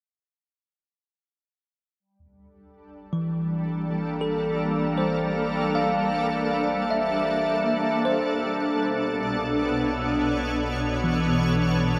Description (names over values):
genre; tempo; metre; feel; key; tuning
ambient; free time; none; none; unclear; A4 = 440 Hz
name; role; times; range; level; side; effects
shimmering ambient pad; sustained chords; 3.4-12.0 s; B2 to C#5; -27 LUFS; equal; chorus, built-in reverb
deep rumbling drone; bass; 3.1-12.0 s; G1 to B1; -40 LUFS; equal; built-in reverb
bell-like tine electric piano; arpeggios; 3.1-12.0 s; E3 to F5; -29 LUFS; equal; diffuse ambient delay
room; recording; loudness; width
wet huge ambient reverb, RT60 7.9 s; none; -25 LUFS; mono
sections
2.0-12.0 A section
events
fade-in on synth drone 2.0-12.0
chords
2.0 Gm7; 8.2 Bm7